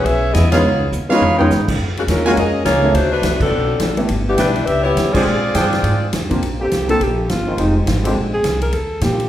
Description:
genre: jazz, big band swing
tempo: 208 BPM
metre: 4/4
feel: swing 61% on 8ths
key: unclear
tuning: A4 = 440 Hz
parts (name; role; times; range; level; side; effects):
- warm saxophone section; melody; 0.0-6.1 s; Db3 to E5; -18 LUFS; left 1 dB; none
- upright bass; bass; 0.0-9.3 s; F1 to Bb2; -20 LUFS; equal; none
- swinging big-band drum kit; drums; 0.1-9.2 s; crash cymbal, hi-hat, kick drum, ride cymbal, snare drum, toms; -22 LUFS; equal; none
- warm baby grand piano; accompaniment; 0.5-8.2 s; G#3 to A4; -20 LUFS; equal; none
- warm trumpet section; stabs; 0.5-2.3, 4.4-6.0 s; D4 to Ab5; -21 LUFS; right 1 dB; none
- breathy alto saxophone; melody; 6.6-9.3 s; Eb4 to Bb4; -19 LUFS; equal; none
- warm trombone section; sustained chords; 6.6-8.1 s; D3 to G4; -28 LUFS; left 1 dB; none
room: wet recital hall reverb, RT60 1.2 s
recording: heard from further back in the room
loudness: -14 LUFS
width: side -12 dB against mid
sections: 0.0-6.4 A section; 6.4-9.3 B section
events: band accent 0.5, 3.4, 5.1; drum fill 0.9-1.5; alto saxophone solo 6.4-9.3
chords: 0.0 E6; 0.6 Db9; 1.8 Gbmaj9; 2.9 D7; 4.1 G6; 5.3 Bb13; 6.4 Bb69; 7.6 Fm7; 8.2 Bbsus2; 8.7 Eb

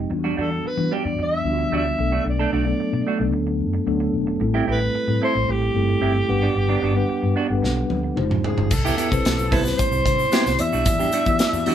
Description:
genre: polished 1980s jazz-funk pop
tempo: 112 BPM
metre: 4/4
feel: straight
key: E minor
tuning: A4 = 440 Hz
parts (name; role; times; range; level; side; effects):
- mellow tine electric piano; accompaniment; 0.0-11.7 s; E3 to G5; -24 LUFS; left 2 dB; medium stereo tremolo
- mellow fretless electric bass; bass; 0.0-11.7 s; E1 to E3; -24 LUFS; equal; none
- semi-hollow electric guitar; riff; 0.1-11.7 s; G3 to A4; -26 LUFS; right 5 dB; none
- breathy alto saxophone; melody; 0.4-11.7 s; G4 to E5; -24 LUFS; right 1 dB; none
- modern studio drum kit; drums; 7.6-11.7 s; crash cymbal, hi-hat, kick drum, snare drum, toms; -23 LUFS; equal; none
- tube shaker; percussion; 8.7-11.7 s; none; -37 LUFS; left 4 dB; none
room: moderate small room reverb, RT60 0.5 s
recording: band playing live in one room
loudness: -19 LUFS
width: side -10 dB against mid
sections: 0.0-8.7 A section; 8.7-11.7 B section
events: drum fill 7.6-8.7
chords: 0.1 Em9; 2.0 Bm7; 4.4 Am7; 6.3 Gmaj7; 8.2 Fm9; 8.7 Cmaj7; 10.6 Em9

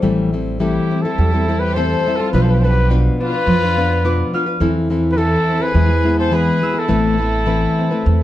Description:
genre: mexican folk, mariachi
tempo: 105 BPM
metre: 4/4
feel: rubato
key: A minor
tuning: A4 = 439 Hz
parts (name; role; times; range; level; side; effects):
- nylon-string guitar; accompaniment; 0.0-8.2 s; A2 to B4; -19 LUFS; left 2 dB; none
- concert harp; arpeggios; 0.0-8.2 s; E3 to F6; -22 LUFS; equal; none
- upright bass; bass; 0.0-8.2 s; A1 to F2; -18 LUFS; right 1 dB; none
- warm trumpet; melody; 0.6-8.2 s; G4 to C5; -20 LUFS; equal; none
- rich chamber violin section; second line; 0.6-8.2 s; E4 to A4; -27 LUFS; left 2 dB; none
room: moderate small room reverb, RT60 0.5 s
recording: dark, warm production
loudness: -14 LUFS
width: side -13 dB against mid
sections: 0.0-8.2 A section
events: none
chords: 0.0 Am7; 2.3 Bdim; 4.6 Am/E; 5.7 E; 6.9 Amadd9

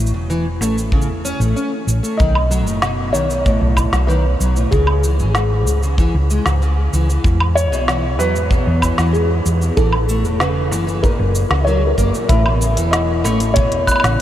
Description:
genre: folktronica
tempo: 95 BPM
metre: 4/4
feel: straight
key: unclear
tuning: A4 = 445 Hz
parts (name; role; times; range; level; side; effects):
- picked plugged-in steel-string acoustic guitar; arpeggios; 0.0-14.2 s; G#2 to C#4; -22 LUFS; equal; analog chorus, analog delay
- hollow-body short-scale fingered electric bass; bass; 0.0-14.2 s; E1 to E2; -17 LUFS; equal; none
- organic electronic drum kit; drums; 0.1-14.2 s; cabasa, hi-hat, snare drum, woodblock; -23 LUFS; equal; none
- kick drum; drums; 0.9-14.0 s; none; -18 LUFS; equal; none
- felt-muted upright piano; melody; 2.2-14.2 s; G#4 to E5; -21 LUFS; equal; wide subtle chorus, analog delay
- glockenspiel with rubber mallets; second line; 12.3-14.2 s; B5 to F#6; -24 LUFS; left 1 dB; analog delay
room: moderate huge ambient reverb, RT60 7.4 s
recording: dreamy mix soaked in reverb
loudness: -14 LUFS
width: side -12 dB against mid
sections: 0.0-12.3 A section; 12.3-14.2 B section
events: none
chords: 0.0 A; 2.2 B7; 4.7 C#m; 7.2 E; 9.8 A; 11.0 F#; 12.3 Aadd9

